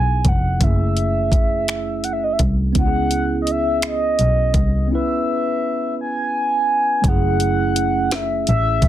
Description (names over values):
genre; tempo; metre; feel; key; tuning
slow six-eight R&B; 56 BPM (dotted quarters); 6/8; straight; unclear; A4 = 441 Hz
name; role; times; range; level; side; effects
mellow horn-like synth lead; melody; 0.0-8.9 s; D#5 to G#5; -21 LUFS; equal; chorus, slapback echo
mellow tine electric piano; accompaniment; 0.0-8.9 s; A3 to B4; -24 LUFS; right 4 dB; phaser
dark double bass; bass; 0.0-8.9 s; E#1 to C#2; -20 LUFS; equal; none
smooth R&B drum kit; drums; 0.2-8.9 s; finger snaps, hi-hat, kick drum, snare drum; -19 LUFS; equal; soft clipping on snare
room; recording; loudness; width
little or no reverb; dense, heavily limited modern master; -16 LUFS; side -12 dB against mid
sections
0.0-7.0 A section; 7.0-8.9 B section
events
break 4.9-7.0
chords
0.0 C#m7 (rootless); 0.6 F#m9; 2.8 C#m7; 7.0 F#m9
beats
| 0.61 1.68 | 2.75 3.82 | 4.89 5.96 | 7.04 8.11